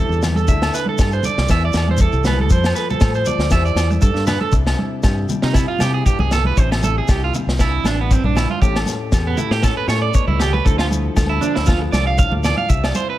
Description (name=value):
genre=highlife guitar band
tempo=118 BPM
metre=4/4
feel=swing 54% on 16ths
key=C major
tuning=A4 = 440 Hz
part: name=nylon-string guitar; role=accompaniment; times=0.0-13.2 s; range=G2 to C5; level=-26 LUFS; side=left 7 dB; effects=none
part: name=electric guitar at the edge of break-up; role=arpeggios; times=0.0-13.2 s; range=B3 to F5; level=-22 LUFS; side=right 7 dB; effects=warbly pitch drift, tape echo
part: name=fingered electric bass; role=bass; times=0.0-12.9 s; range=A1 to C3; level=-19 LUFS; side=equal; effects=none
part: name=shekere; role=percussion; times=0.1-13.1 s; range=none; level=-25 LUFS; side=left 2 dB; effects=none
part: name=vintage drum kit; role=drums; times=0.2-12.9 s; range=kick drum, snare drum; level=-20 LUFS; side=equal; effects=none
part: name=agogo bells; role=percussion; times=0.2-13.0 s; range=none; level=-30 LUFS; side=left 2 dB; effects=none
part: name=congas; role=percussion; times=0.2-13.1 s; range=none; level=-26 LUFS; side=right 2 dB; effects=none
room=light reverb, small room ambience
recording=none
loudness=-15 LUFS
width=side -14 dB against mid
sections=0.0-4.5 A section; 4.5-13.2 B section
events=clean electric guitar solo 4.5-13.2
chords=0.5 Dsus2; 2.5 F; 3.5 Cadd9/E; 4.0 G; 4.5 Cadd9; 8.6 A7; 10.7 Dmadd9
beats=| 0.47 0.98 1.49 2.00 | 2.50 3.01 3.52 4.03 | 4.54 5.04 5.55 6.07 | 6.58 7.08 7.60 8.11 | 8.62 9.13 9.64 10.15 | 10.66 11.17 11.68 12.19 | 12.70